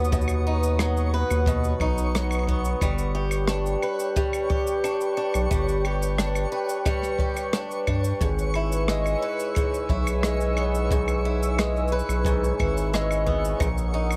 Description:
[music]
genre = folktronica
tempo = 89 BPM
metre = 4/4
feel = straight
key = unclear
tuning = A4 = 440 Hz
[part]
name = warbly tape-like pad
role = sustained chords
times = 0.0-14.2 s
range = A#4 to E6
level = -35 LUFS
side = equal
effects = chorus, built-in reverb, phaser
[part]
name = picked swing-style acoustic guitar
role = arpeggios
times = 0.0-14.2 s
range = G#2 to B4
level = -30 LUFS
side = equal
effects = delay
[part]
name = round analog bass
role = bass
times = 0.0-14.2 s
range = G1 to G2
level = -28 LUFS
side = equal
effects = none
[part]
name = cabasa, claves and rim click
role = drums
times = 0.0-14.2 s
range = none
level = -34 LUFS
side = equal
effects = none
[part]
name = twinkling granular texture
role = texture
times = 0.0-14.2 s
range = C#5 to C#6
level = -38 LUFS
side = equal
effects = built-in reverb
[part]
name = kick drum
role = drums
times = 0.1-13.7 s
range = none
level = -30 LUFS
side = equal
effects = none
[sound]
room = light reverb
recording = vinyl crackle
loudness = -24 LUFS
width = mono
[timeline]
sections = 0.0-14.2 A section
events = none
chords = 0.0 B; 2.8 G; 8.2 E/G#; 13.6 F#6/A#

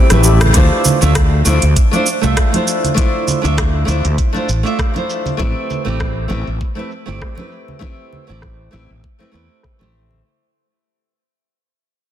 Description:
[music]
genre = sunset chillout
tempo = 99 BPM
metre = 4/4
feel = swing 56% on 16ths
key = D dorian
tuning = A4 = 440 Hz
[part]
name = flamenco guitar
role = accompaniment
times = 0.0-10.2 s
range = A3 to E5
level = -19 LUFS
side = equal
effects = auto-pan, tape echo
[part]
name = lush unison pad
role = sustained chords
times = 0.0-0.5 s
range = none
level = barely audible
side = none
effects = none
[part]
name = fretless electric bass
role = bass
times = 0.1-10.2 s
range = G1 to E2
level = -14 LUFS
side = equal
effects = none
[part]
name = smooth R&B drum kit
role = drums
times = 0.1-10.2 s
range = hi-hat, rim click, shaker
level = -21 LUFS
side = right 1 dB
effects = overdrive, low-pass filter on hats, low-pass filter on perc, low-pass filter on snare
[part]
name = congas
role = percussion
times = 0.1-10.2 s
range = none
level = -22 LUFS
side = right 2 dB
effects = none
[part]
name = steel pan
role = arpeggios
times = 0.2-0.5 s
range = G4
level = -25 LUFS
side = left 4 dB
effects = none
[part]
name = electronic kick drum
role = drums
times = 0.6-9.8 s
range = none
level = -15 LUFS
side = equal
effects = none
[sound]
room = light reverb, small room ambience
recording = dense, heavily limited modern master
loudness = -12 LUFS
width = side -11 dB against mid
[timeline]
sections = 0.5-10.2 A section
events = drum fill 0.0-0.5; band accent 0.4-0.7; fade-out 0.5-10.2; filter sweep on drum 0.5-10.2; filter sweep on fretless electric bass 0.5-10.2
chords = 0.0 A7sus2; 0.5 Dm9; 5.4 Am9

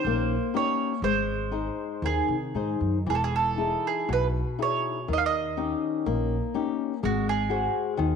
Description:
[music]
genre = fado-style ballad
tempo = 60 BPM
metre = 2/4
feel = uneven beats, rubato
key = unclear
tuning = A4 = 440 Hz
[part]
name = mandolin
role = melody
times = 0.0-8.2 s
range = F#4 to E#5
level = -28 LUFS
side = right 8 dB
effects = none
[part]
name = flamenco guitar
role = accompaniment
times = 0.0-8.2 s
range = B2 to B#4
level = -28 LUFS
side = left 8 dB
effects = none
[part]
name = upright bass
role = bass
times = 0.0-8.2 s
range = E1 to B#2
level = -30 LUFS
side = right 1 dB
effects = none
[sound]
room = moderate echo chamber reverb, RT60 1.7 s, studio reverb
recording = 1960s-style stereo with parts hard left and right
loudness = -24 LUFS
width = side -6 dB against mid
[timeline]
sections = 0.0-8.2 A section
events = none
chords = 0.0 D#7; 1.0 G#; 3.1 Emaj7; 5.1 D#7; 7.0 G#7

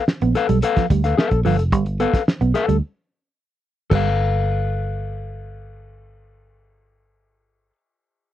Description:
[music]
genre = funk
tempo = 110 BPM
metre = 4/4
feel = straight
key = G mixolydian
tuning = A4 = 440 Hz
[part]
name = mellow electric guitar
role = accompaniment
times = 0.0-7.8 s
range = A4 to F5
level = -22 LUFS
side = left 6 dB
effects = none
[part]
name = cloth-damped thuddy drum kit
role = drums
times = 0.1-4.0 s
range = crash cymbal, hi-hat, kick drum, snare drum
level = -21 LUFS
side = equal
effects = none
[part]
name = electric guitar at the edge of break-up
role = riff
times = 0.2-4.1 s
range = F3 to B3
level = -22 LUFS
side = right 8 dB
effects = none
[part]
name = vintage muted fingered electric bass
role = bass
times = 0.2-7.7 s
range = F1 to D2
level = -21 LUFS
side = equal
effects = none
[sound]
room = little or no reverb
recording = dry, close 1970s-style studio recording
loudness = -17 LUFS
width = side -12 dB against mid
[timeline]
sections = 0.0-3.9 A section; 3.9-8.3 B section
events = break 2.8-3.9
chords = 0.0 G9

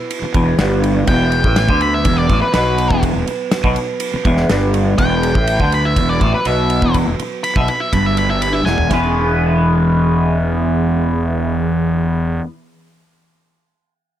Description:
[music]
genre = psychedelic rock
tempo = 122 BPM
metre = 4/4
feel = straight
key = E mixolydian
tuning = A4 = 441 Hz
[part]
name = dark French horn section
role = sustained chords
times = 0.0-12.4 s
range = F#3 to B4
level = -26 LUFS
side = right 5 dB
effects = none
[part]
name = damped 70s drum kit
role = drums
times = 0.1-9.0 s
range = kick drum, ride cymbal, snare drum, toms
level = -20 LUFS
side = equal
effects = none
[part]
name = twangy electric guitar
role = riff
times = 0.2-12.5 s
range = E2 to B4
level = -17 LUFS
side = equal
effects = phaser, double-tracked left and right
[part]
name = fuzz fingered electric bass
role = bass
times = 0.2-12.4 s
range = E1 to D2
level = -19 LUFS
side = equal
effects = overdrive
[part]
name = octave-fuzz lead guitar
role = melody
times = 1.1-8.9 s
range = B4 to B5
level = -20 LUFS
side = left 1 dB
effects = distortion, slapback echo
[sound]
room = small room ambience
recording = none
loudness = -13 LUFS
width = side -11 dB against mid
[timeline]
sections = 0.0-8.9 A section; 8.9-12.8 B section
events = lead electric guitar solo 0.0-8.9; drum fill 8.7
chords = 0.0 E5; 8.9 E6

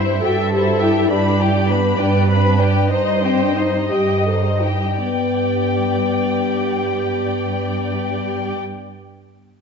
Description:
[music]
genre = quick classical-period movement for symphony orchestra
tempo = 54-70 BPM (dotted quarters)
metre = 6/8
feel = rubato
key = G major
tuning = A4 = 439 Hz
[part]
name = muted studio violin section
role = melody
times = 0.0-8.6 s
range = Eb5 to B5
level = -25 LUFS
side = left 4 dB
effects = none
[part]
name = muted chamber violin section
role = second line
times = 0.0-8.6 s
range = D4 to E5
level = -25 LUFS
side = left 3 dB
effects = none
[part]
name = muted studio viola section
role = accompaniment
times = 0.0-8.6 s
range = G4 to Eb5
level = -24 LUFS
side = right 2 dB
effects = none
[part]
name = dark French horn section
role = sustained chords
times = 0.0-8.5 s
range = B3 to A4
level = -21 LUFS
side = left 4 dB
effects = none
[part]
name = muted chamber cello section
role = bass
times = 0.0-8.6 s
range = G2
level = -20 LUFS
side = right 4 dB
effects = none
[sound]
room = moderate concert hall reverb, RT60 1.8 s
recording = nothing above 7.8 kHz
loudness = -16 LUFS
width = side -6 dB against mid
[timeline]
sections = 0.0-5.0 A section; 5.0-9.4 B section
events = slowing down 0.2-5.0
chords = 0.0 C/G; 1.1 G; 2.9 Cm/G; 5.0 G

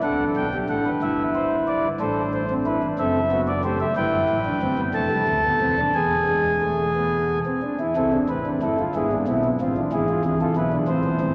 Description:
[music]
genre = classical, baroque-style 4-part fugue for pipe organ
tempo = 61 BPM (dotted quarters)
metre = 6/8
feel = straight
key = unclear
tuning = A4 = 436 Hz
[part]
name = chamber organ, principal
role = solo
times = 0.0-11.3 s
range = D1 to A5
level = -22 LUFS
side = equal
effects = none
[sound]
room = wet cathedral reverb, RT60 5.2 s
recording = none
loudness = -22 LUFS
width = mono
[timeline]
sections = 0.0-8.0 A section; 8.0-11.3 B section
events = none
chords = 0.0 G; 1.0 Em/G; 2.0 Am; 3.0 F#dim; 4.0 C/G; 4.9 Dm; 5.9 E; 8.0 Am; 8.9 E7/G#

